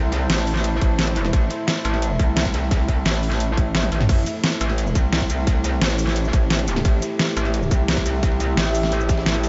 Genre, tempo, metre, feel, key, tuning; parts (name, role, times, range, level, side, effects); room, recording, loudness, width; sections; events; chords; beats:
dark technical drum and bass; 174 BPM; 4/4; straight; A minor; A4 = 440 Hz
deep dark ambient pad; sustained chords; 0.0-9.5 s; A3 to E5; -29 LUFS; equal; chorus, built-in reverb, sidechain pumping
metallic wobble bass; bass; 0.0-9.5 s; A1 to C2; -25 LUFS; equal; distortion, chorus, sidechain pumping
crunchy breakbeat drum kit; drums; 0.1-9.5 s; ride cymbal, snare drum; -37 LUFS; equal
dubstep drum kit; drums; 0.1-9.5 s; crash cymbal, hi-hat, shaker, snare drum, toms; -26 LUFS; equal; overdrive, small room ambience
electronic kick drum; drums; 0.8-9.2 s; -22 LUFS; equal; overdrive, small room ambience
light reverb; nothing above 7.8 kHz; -21 LUFS; mono
0.0-9.5 A section
drum fill 3.7-4.1
0.0 Am
0.30 0.64 0.99 | 1.33 1.68 2.02 2.37 | 2.71 3.06 3.40 3.75 | 4.09 4.44 4.78 5.13 | 5.47 5.82 6.16 6.50 | 6.85 7.20 7.54 7.88 | 8.23 8.57 8.92 9.26